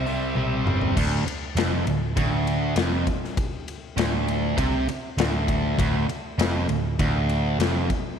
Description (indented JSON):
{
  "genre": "blues rock power trio and southern rock",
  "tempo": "100 BPM",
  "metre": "4/4",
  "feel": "straight",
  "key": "D minor",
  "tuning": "A4 = 440 Hz",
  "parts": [
    { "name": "overdriven slide guitar", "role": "melody", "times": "0.0-0.6 s", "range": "E5", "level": "-36 LUFS", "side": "right 1 dB", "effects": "tape echo" },
    { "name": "distorted electric guitar", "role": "riff", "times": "0.0-7.9 s", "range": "D2 to C4", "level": "-25 LUFS", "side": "right 1 dB", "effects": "overdrive" },
    { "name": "vintage muted picked electric bass", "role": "bass", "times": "0.0-7.9 s", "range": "D1 to C2", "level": "-26 LUFS", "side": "right 1 dB", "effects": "none" },
    { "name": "big rock drum kit", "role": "drums", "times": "0.1-8.0 s", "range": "crash cymbal, hi-hat, kick drum, ride cymbal, snare drum, toms", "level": "-27 LUFS", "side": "left 3 dB", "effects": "none" }
  ],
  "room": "moderate echo chamber reverb, RT60 2.2 s",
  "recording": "1960s-style stereo",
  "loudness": "-22 LUFS",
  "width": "side -7 dB against mid",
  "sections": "1.0-8.2 A section",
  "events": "drum fill 0.4-1.0",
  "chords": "0.0 C; 1.0 Dm",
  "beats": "0.36 | 0.96 1.56 2.17 2.77 | 3.37 3.97 4.57 5.18 | 5.78 6.38 6.99 7.59"
}